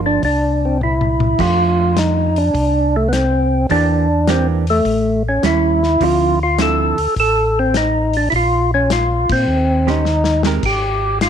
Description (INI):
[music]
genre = soul jazz organ trio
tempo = 104 BPM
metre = 4/4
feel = swing 68% on 8ths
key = F major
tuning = A4 = 440 Hz
[part]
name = hollow-body jazz guitar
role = accompaniment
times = 0.0-10.6 s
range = D3 to C5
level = -21 LUFS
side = right 13 dB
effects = none
[part]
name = mellow tonewheel organ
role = bass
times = 0.0-11.3 s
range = G1 to Bb2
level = -19 LUFS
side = equal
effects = slow rotary speaker
[part]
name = percussive tonewheel organ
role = melody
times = 0.1-11.3 s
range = A3 to A4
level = -16 LUFS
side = equal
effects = slow rotary speaker, overdrive
[part]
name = warm soul drum kit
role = drums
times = 0.2-11.3 s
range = crash cymbal, hi-hat, kick drum, snare drum, toms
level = -24 LUFS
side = left 5 dB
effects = none
[sound]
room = light reverb, studio ambience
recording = 1960s-style stereo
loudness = -13 LUFS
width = side -8 dB against mid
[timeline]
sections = 0.0-1.4 A section; 1.4-11.3 B section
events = drum fill 0.8-1.4, 10.1-10.6; band accent 9.2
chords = 0.2 Cadd9; 1.4 F69; 3.7 Em7b5; 4.9 A7; 6.0 Dm9; 8.3 Bbmadd9; 9.5 Eb6; 10.6 Abmaj7(no3)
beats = 0.23 0.81 | 1.39 1.97 2.54 3.12 | 3.70 4.28 4.86 5.44 | 6.02 6.59 7.17 7.75 | 8.33 8.91 9.48 10.06 | 10.64 11.22